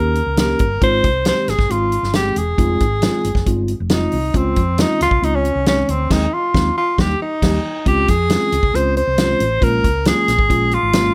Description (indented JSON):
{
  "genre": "uptempo 1960s-style soul",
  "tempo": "136 BPM",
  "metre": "4/4",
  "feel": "straight",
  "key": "unclear",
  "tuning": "A4 = 440 Hz",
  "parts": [
    { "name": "warm tenor saxophone", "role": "melody", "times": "0.0-11.1 s", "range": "C4 to C5", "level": "-21 LUFS", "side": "equal", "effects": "none" },
    { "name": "mellow tine electric piano", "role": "accompaniment", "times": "0.0-11.1 s", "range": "G3 to Ab4", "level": "-24 LUFS", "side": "equal", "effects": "none" },
    { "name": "hollow-body short-scale fingered electric bass", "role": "bass", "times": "0.0-11.1 s", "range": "Fb1 to F2", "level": "-24 LUFS", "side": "equal", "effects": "none" },
    { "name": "natural country drum kit", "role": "drums", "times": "0.2-11.0 s", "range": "crash cymbal, hi-hat, kick drum, snare drum", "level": "-22 LUFS", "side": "equal", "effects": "none" }
  ],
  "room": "moderate small room reverb, RT60 0.6 s",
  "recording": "none",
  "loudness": "-17 LUFS",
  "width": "mono",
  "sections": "0.0-7.9 A section; 7.9-11.1 B section",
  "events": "band accent 6.1-7.9",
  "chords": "0.0 Eb7; 0.8 Ab6; 2.6 Fm7; 4.3 Dbmaj7; 6.1 Ab/Eb; 7.0 Eb; 7.9 Dbmaj7; 9.6 Bbm7"
}